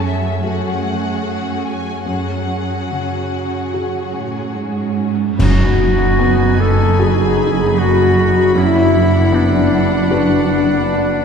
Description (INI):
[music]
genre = cinematic, emotional film score for orchestra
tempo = 71-78 BPM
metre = 4/4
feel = rubato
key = F# minor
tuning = A4 = 440 Hz
[part]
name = rich studio violin section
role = melody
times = 0.0-11.2 s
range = E5 to B5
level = -28 LUFS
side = left 4 dB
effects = none
[part]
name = rich studio violin section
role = second line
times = 0.0-11.2 s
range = F#4 to G#5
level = -28 LUFS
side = left 3 dB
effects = none
[part]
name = felt-muted upright piano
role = accompaniment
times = 0.0-11.2 s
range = F#2 to B4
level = -23 LUFS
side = left 2 dB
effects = none
[part]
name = warm studio viola section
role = accompaniment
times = 0.0-11.2 s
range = F#3 to D#4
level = -25 LUFS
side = right 1 dB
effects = none
[part]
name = warm studio cello section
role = bass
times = 0.0-11.2 s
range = F#2 to A2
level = -20 LUFS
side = right 3 dB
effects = none
[part]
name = cymbal swell, clash cymbals and concert bass drum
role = percussion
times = 2.1-7.0 s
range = none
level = -22 LUFS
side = equal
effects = none
[part]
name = mellow clarinet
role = second line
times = 5.4-11.2 s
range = D4 to A4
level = -22 LUFS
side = left 2 dB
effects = none
[part]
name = warm oboe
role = second line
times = 5.4-11.2 s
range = D4 to A4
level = -24 LUFS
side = right 1 dB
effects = none
[part]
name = mellow French horn section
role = sustained chords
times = 5.4-11.2 s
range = D4 to A4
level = -17 LUFS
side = left 3 dB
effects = none
[part]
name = rich studio double bass section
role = bass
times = 5.4-11.2 s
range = F#1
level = -19 LUFS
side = right 3 dB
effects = none
[part]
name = timpani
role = percussion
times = 5.4-6.6 s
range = F#2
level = -22 LUFS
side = right 1 dB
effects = none
[sound]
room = wet cathedral reverb, RT60 4.5 s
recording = dark, warm production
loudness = -13 LUFS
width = side -6 dB against mid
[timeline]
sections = 0.0-5.4 A section; 5.4-11.2 B section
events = band accent 5.4-6.2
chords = 0.0 F#madd9; 5.4 G#m7/F#; 8.6 Bm/F#